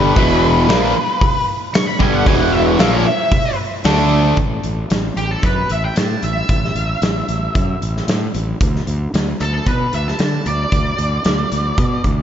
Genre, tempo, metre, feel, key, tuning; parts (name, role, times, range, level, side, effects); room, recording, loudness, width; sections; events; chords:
blues rock power trio and southern rock; 114 BPM; 4/4; straight; A4 = 440 Hz
octave-fuzz lead guitar; melody; 0.0-12.0 s; G4 to C#6; -21 LUFS; equal; wah, distortion, slapback echo
cranked stack guitar; riff; 0.0-4.4 s; E2 to D4; -17 LUFS; equal; overdrive
fuzz fingered electric bass; bass; 0.0-12.2 s; E1 to D3; -20 LUFS; equal; overdrive
big rock drum kit; drums; 0.2-12.2 s; hi-hat, kick drum, snare drum; -19 LUFS; equal
moderate lush hall reverb, RT60 2.8 s; big arena sound, nothing above 7.6 kHz; -14 LUFS; side -9 dB against mid
0.0-4.4 A section; 4.4-12.2 B section
lead electric guitar solo 0.0-4.4
0.0 E5; 3.8 D5; 4.4 A5; 8.6 N.C.